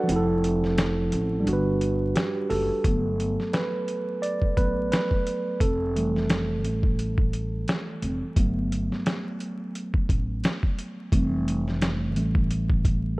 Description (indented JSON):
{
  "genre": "lo-fi hip hop",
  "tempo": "87 BPM",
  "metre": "4/4",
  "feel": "swing 56% on 16ths",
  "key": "G major",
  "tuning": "A4 = 440 Hz",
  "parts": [
    { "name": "mellow tine electric piano", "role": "accompaniment", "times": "0.0-13.2 s", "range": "E3 to F#5", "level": "-26 LUFS", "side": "right 1 dB", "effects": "low-pass filter" },
    { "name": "upright bass", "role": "bass", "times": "0.1-13.2 s", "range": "F1 to A1", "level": "-29 LUFS", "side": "equal", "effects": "none" },
    { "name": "boom bap sampler-style drum kit", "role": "drums", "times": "0.1-13.0 s", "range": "hi-hat, kick drum, snare drum", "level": "-25 LUFS", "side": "equal", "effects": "vintage 12-bit sampler grit" }
  ],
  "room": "light reverb",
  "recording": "vinyl crackle",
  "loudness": "-23 LUFS",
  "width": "side -22 dB against mid",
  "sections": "0.0-2.8 A section; 2.8-13.2 B section",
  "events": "kick muted 0.1-2.8; tine electric piano solo 2.8-13.2",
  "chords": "0.1 Fmaj7; 1.5 Gmaj7; 2.8 Gmaj9; 5.6 Fmaj7; 8.4 Gmaj9; 11.1 Fmaj7",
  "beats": "| 0.09 0.78 1.47 2.15 | 2.85 3.53 4.22 4.91 | 5.60 6.29 6.98 7.67 | 8.36 9.05 9.74 10.43 | 11.12 11.81 12.50 13.19"
}